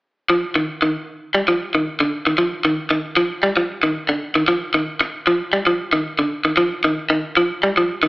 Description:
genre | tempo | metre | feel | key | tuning
afrobeat | 114 BPM | 4/4 | straight | unclear | A4 = 440 Hz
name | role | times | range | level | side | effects
electric guitar at the edge of break-up | arpeggios | 0.3-8.1 s | D3 to G3 | -16 LUFS | equal | none
room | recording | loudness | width
moderate large studio reverb, RT60 1.1 s | band playing live in one room, AM radio sound | -17 LUFS | side -23 dB against mid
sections
0.3-8.1 A section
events
none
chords
none

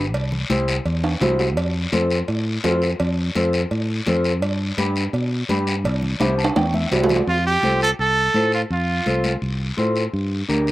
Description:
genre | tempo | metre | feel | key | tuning
latin, cumbia | 168 BPM | 4/4 | straight | F major | A4 = 440 Hz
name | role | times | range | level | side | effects
mellow electric guitar | accompaniment | 0.0-10.7 s | D4 to A5 | -24 LUFS | left 1 dB | none
fingered electric bass | bass | 0.0-10.7 s | G1 to B2 | -22 LUFS | equal | none
congas | percussion | 0.1-10.7 s | none | -28 LUFS | left 2 dB | none
cowbell and timbales | percussion | 0.1-7.2 s | none | -25 LUFS | right 3 dB | none
guiro | percussion | 0.1-10.7 s | none | -30 LUFS | left 4 dB | none
bright trumpet | melody | 7.3-9.4 s | F4 to A4 | -19 LUFS | right 2 dB | slapback echo
room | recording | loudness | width
little or no reverb | recorded outdoors, with no room sound | -18 LUFS | side -16 dB against mid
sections
0.0-7.3 A section; 7.3-10.7 B section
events
drum fill 1.0-1.6, 6.2-7.3; clean electric guitar fill 6.2-7.3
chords
0.1 C; 1.6 F; 4.4 G; 5.8 C; 7.3 F; 10.1 Gm

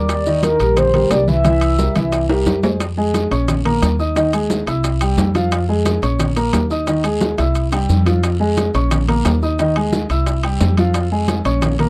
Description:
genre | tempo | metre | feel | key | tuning
latin, salsa | 177 BPM | 4/4 | straight | F minor | A4 = 442 Hz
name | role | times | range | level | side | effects
mellow horn-like synth lead | melody | 0.0-2.6 s | Bb4 to E5 | -21 LUFS | equal | chorus
dark upright piano | accompaniment | 0.0-11.9 s | Eb3 to E6 | -21 LUFS | equal | none
upright bass | bass | 0.0-11.9 s | Bb1 to F2 | -21 LUFS | equal | none
bongos | percussion | 0.1-11.9 s | none | -30 LUFS | equal | none
congas | percussion | 0.1-11.9 s | none | -26 LUFS | equal | none
guiro | percussion | 0.1-11.9 s | none | -38 LUFS | equal | none
maracas | percussion | 0.1-11.8 s | none | -36 LUFS | equal | none
timbales | percussion | 0.1-11.9 s | none | -27 LUFS | equal | none
room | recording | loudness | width
little or no reverb | dry, close 1970s-style studio recording | -17 LUFS | mono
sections
0.0-2.8 A section; 2.8-11.9 B section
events
drum fill 2.3-2.8, 7.2-8.2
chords
0.1 Ebmaj7; 1.4 C7; 2.8 Fm; 3.5 Bbm; 4.2 Ebsus4; 4.8 C; 5.5 Fm; 6.2 Bbm; 6.9 Ebsus4; 7.6 C; 8.2 Fm; 8.9 Bbm; 9.6 Ebsus4; 10.3 C; 10.9 Fm

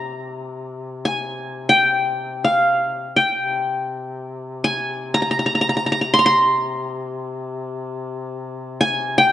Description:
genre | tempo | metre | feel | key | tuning
Arabic maqam ensemble | free time | none | none | unclear | A4 = 439 Hz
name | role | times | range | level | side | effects
qanun | melody | 0.0-9.3 s | F5 to C6 | -17 LUFS | equal | none
mellow duduk | drone | 0.0-9.3 s | C3 | -31 LUFS | left 3 dB | none
room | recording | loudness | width
moderate lush hall reverb, RT60 2.2 s | rough home demo mix, nothing above 10.4 kHz | -18 LUFS | side -12 dB against mid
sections
0.0-9.3 A section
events
none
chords
none

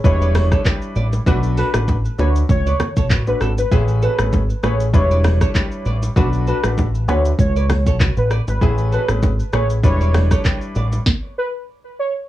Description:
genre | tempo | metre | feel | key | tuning
afrobeats | 98 BPM | 4/4 | swing 55% on 16ths | unclear | A4 = 440 Hz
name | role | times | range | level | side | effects
warm baby grand piano | accompaniment | 0.0-11.0 s | G3 to B4 | -25 LUFS | left 4 dB | none
deep dub fingered electric bass | bass | 0.0-11.0 s | E1 to D2 | -18 LUFS | equal | none
afro-pop drum kit | drums | 0.0-11.2 s | handclaps, hi-hat, kick drum, rim click, shaker, snare drum | -18 LUFS | equal | none
congas and bongos | percussion | 0.0-11.1 s | none | -26 LUFS | right 3 dB | none
warm velvety synth lead | melody | 0.1-12.1 s | B4 to C#5 | -24 LUFS | right 1 dB | chorus, tape echo
flamenco guitar | riff | 0.2-10.9 s | D4 to D5 | -28 LUFS | right 5 dB | tape echo
room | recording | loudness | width
little or no reverb | worn, warbling old tape, cassette tape, warbly pitch drift | -15 LUFS | side -14 dB against mid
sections
0.0-12.3 A section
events
stop 11.1-12.3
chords
0.0 Em7; 1.3 Bm7; 2.2 D6; 3.7 Amaj9; 4.9 Em7; 6.2 Bm7; 7.1 D6; 8.6 Amaj9; 9.8 Em7; 11.1 N.C.

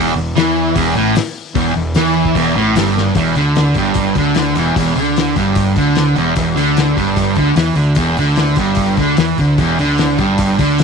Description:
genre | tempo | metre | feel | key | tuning
garage rock duo or trio | 149 BPM | 4/4 | straight | unclear | A4 = 436 Hz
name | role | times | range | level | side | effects
fuzz guitar | riff | 0.0-10.8 s | E2 to E3 | -13 LUFS | right 1 dB | distortion
fuzz fingered electric bass | bass | 0.0-10.8 s | E1 to E2 | -22 LUFS | equal | overdrive, tube saturation
cloth-damped thuddy drum kit | drums | 0.4-10.8 s | hi-hat, kick drum, snare drum | -20 LUFS | left 5 dB | none
room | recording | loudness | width
small room ambience | 1960s-style stereo | -12 LUFS | side -5 dB against mid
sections
0.0-3.2 A section; 3.2-10.8 B section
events
drum fill 3.0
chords
0.0 Emadd11; 3.2 Em7

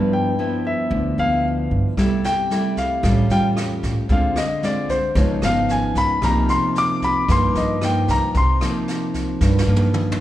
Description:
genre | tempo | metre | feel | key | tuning
bossa nova | 113 BPM | 4/4 | straight | C minor | A4 = 440 Hz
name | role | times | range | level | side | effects
nylon-string guitar | accompaniment | 0.0-10.2 s | G2 to F4 | -21 LUFS | equal | none
upright bass | bass | 0.0-10.2 s | Ab1 to G2 | -22 LUFS | right 1 dB | none
warm grand piano | melody | 0.1-8.9 s | C5 to D6 | -22 LUFS | left 2 dB | none
jazz brush drum kit | drums | 2.0-10.2 s | kick drum, rim click, snare drum, toms | -25 LUFS | equal | none
room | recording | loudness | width
moderate scoring stage reverb, RT60 2.0 s | recorded in a church or concert hall | -17 LUFS | side -13 dB against mid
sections
0.0-10.2 A section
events
grand piano solo 0.0-10.2; drum fill 9.4-10.2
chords
0.0 G6; 2.0 C6; 3.0 A7b13; 4.1 Dm7b5; 5.2 Db9; 6.2 Cm7

